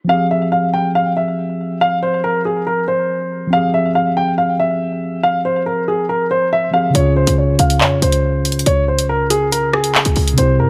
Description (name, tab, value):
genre	hip hop, drill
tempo	140 BPM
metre	4/4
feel	half-time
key	F harmonic minor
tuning	A4 = 441 Hz
part	mellow tine electric piano	accompaniment	0.0-10.7 s	C3 to Ab4	-22 LUFS	equal	none
part	dark concert grand piano	melody	0.1-10.7 s	Ab4 to G5	-19 LUFS	equal	delay
part	drill drum kit	drums	6.9-10.5 s	handclaps, hi-hat, rim click	-20 LUFS	equal	none
part	short 808-style bass	bass	7.0-10.7 s	C2 to G2	-21 LUFS	equal	none
room	little or no reverb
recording	none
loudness	-16 LUFS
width	mono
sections	0.1-10.7 A section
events	none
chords	0.1 Fmadd9; 7.0 Db